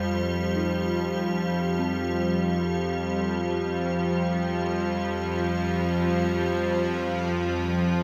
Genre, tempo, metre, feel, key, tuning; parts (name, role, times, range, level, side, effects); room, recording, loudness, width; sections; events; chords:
dark ambient drone; free time; A4 = 440 Hz
dark detuned synth bell; arpeggios; 0.0-8.0 s; C4 to Bb4; -41 LUFS; equal
bowed-like drone; drone; 0.0-8.0 s; F2 to F3; -28 LUFS; equal; built-in reverb
icy glass pad; texture; 0.0-8.0 s; F3 to G4; -32 LUFS; equal; chorus, built-in reverb
wet huge ambient reverb, RT60 7.2 s; in a vast, echoing space; -26 LUFS; mono
0.0-8.0 A section
0.0 Fsus2